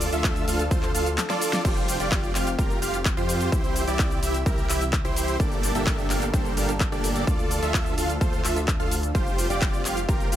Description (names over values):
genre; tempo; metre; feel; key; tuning
EDM, festival progressive house; 128 BPM; 4/4; straight; F major; A4 = 440 Hz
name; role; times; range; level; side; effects
lush unison pad; sustained chords; 0.0-10.4 s; G3 to A4; -34 LUFS; left 2 dB; chorus, phaser, sidechain pumping
dense compressed supersaw; riff; 0.0-10.4 s; Bb3 to F5; -27 LUFS; right 1 dB; sidechain pumping, digital delay
wide detuned saw bass; bass; 0.0-10.4 s; F1 to F2; -30 LUFS; equal; chorus, sidechain pumping
big-room dance drum kit; drums; 0.0-10.4 s; crash cymbal, handclaps, hi-hat, shaker, snare drum; -30 LUFS; left 1 dB; overdrive
electronic kick drum; drums; 0.2-10.2 s; none; -25 LUFS; equal; overdrive
room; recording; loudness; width
little or no reverb; none; -22 LUFS; side -11 dB against mid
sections
0.0-1.6 A section; 1.6-10.4 A section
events
drop 0.0-1.6, 1.6-10.4; drum fill 1.2-1.6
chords
0.0 Dm; 1.6 Fsus2; 3.5 C; 5.4 Gmadd9; 7.3 Dm; 9.1 Fsus2